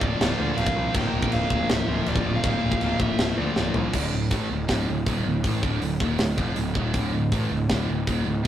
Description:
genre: heavy metal.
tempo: 160 BPM.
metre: 4/4.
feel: straight.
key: D minor.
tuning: A4 = 436 Hz.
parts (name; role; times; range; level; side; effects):
high-gain lead guitar; melody; 0.0-3.7 s; D5 to G5; -30 LUFS; right 1 dB; distortion.
scooped high-gain guitar; riff; 0.0-8.5 s; D2 to Bb3; -29 LUFS; right 4 dB; distortion.
sludgy distorted guitar; riff; 0.0-8.5 s; D2 to Bb3; -31 LUFS; left 6 dB; overdrive.
tight distorted guitar; riff; 0.0-3.9 s; Bb2 to Bb3; -31 LUFS; left 1 dB; distortion.
fuzz picked electric bass; bass; 0.0-8.5 s; D1 to D2; -27 LUFS; equal; overdrive.
tight metal drum kit; drums; 0.0-8.5 s; china cymbal, crash cymbal, hi-hat, kick drum, snare drum, toms; -27 LUFS; equal; none.
room: moderate stone room reverb, RT60 1.0 s.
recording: rough rehearsal-room recording, tube saturation.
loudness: -22 LUFS.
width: side -11 dB against mid.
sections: 0.0-3.9 A section; 3.9-8.5 B section.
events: drum fill 3.6-3.9.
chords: 0.0 Bb/D; 3.9 Dm.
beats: 0.20 0.57 | 0.94 1.32 1.69 2.06 | 2.44 2.81 3.19 3.56 | 3.93 4.31 4.68 5.06 | 5.44 5.81 6.19 6.57 | 6.94 7.32 7.69 8.07 | 8.45.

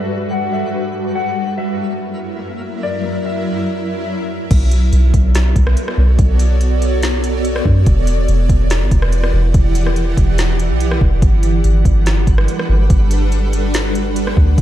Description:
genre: hip hop, atmospheric cloud-rap.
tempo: 143 BPM.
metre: 4/4.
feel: half-time.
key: B minor.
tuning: A4 = 445 Hz.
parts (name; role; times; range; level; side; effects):
concert harp; melody; 0.0-5.0 s; D5 to F#5; -25 LUFS; left 5 dB; low-pass filter, analog delay.
granular cloud pad; sustained chords; 0.0-14.6 s; F#2 to F#5; -20 LUFS; equal; built-in reverb, tremolo, sidechain pumping, low-pass filter.
twinkling granular texture; texture; 0.0-4.5, 12.0-14.6 s; F#3 to E5; -32 LUFS; right 1 dB; built-in reverb.
soft 808-style bass; bass; 4.5-14.6 s; E1 to F#2; -14 LUFS; equal; none.
smooth R&B drum kit; drums; 4.5-14.6 s; crash cymbal, hi-hat, kick drum, rim click, snare drum; -17 LUFS; equal; none.
room: little or no reverb.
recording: dark, warm production.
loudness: -13 LUFS.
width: side -12 dB against mid.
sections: 0.0-4.5 A section; 4.5-14.6 B section.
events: none.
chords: 0.0 Gmaj7; 1.2 F#7; 4.5 Bm7; 7.9 Em7; 11.2 Gmaj7.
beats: 0.31 0.73 | 1.15 1.57 1.99 2.41 | 2.83 3.25 3.67 4.09 | 4.51 4.93 5.35 5.77 | 6.19 6.61 7.03 7.45 | 7.87 8.29 8.71 9.12 | 9.54 9.96 10.38 10.80 | 11.22 11.64 12.06 12.48 | 12.90 13.32 13.74 14.16 | 14.58.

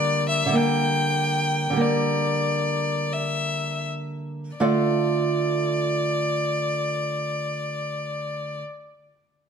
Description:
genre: romantic duo for violin and classical guitar.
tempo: 38-56 BPM.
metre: 4/4.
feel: rubato.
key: D minor.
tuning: A4 = 442 Hz.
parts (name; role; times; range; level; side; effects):
clear violin; melody; 0.0-8.6 s; D5 to G5; -25 LUFS; left 3 dB; none.
nylon-string guitar; accompaniment; 0.0-8.6 s; D3 to F5; -24 LUFS; right 2 dB; none.
room: moderate recital hall reverb, RT60 1.4 s.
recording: none.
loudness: -22 LUFS.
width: side -7 dB against mid.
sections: 0.0-4.6 A section; 4.6-9.5 B section.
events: slowing down 0.0-4.6.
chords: 0.0 Gm/D; 4.6 Dm.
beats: 0.57 1.79 3.13 | 4.60 5.93 7.24 8.53.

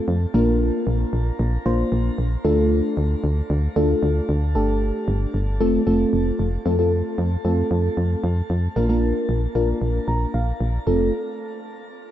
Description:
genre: synth-pop.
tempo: 114 BPM.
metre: 4/4.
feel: straight.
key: F major.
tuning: A4 = 440 Hz.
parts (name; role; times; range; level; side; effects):
mellow FM electric piano; accompaniment; 0.0-11.1 s; A3 to Bb5; -22 LUFS; equal; chorus, phaser, shimmer reverb.
solid FM bass; bass; 0.1-11.1 s; F1 to F2; -21 LUFS; equal; none.
room: moderate plate reverb, RT60 2.7 s.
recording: none.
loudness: -19 LUFS.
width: side -12 dB against mid.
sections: 0.0-6.7 A section; 6.7-10.9 B section; 10.9-12.1 C section.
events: FM electric piano fill 9.8-10.9.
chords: 0.3 Bb; 2.4 Dm; 4.6 Gsus2; 5.6 F; 8.8 Bb; 10.9 F.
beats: | 0.34 0.87 1.39 1.92 | 2.45 2.97 3.50 4.03 | 4.55 5.08 5.61 6.13 | 6.66 7.18 7.71 8.24 | 8.76 9.29 9.81 10.34 | 10.87.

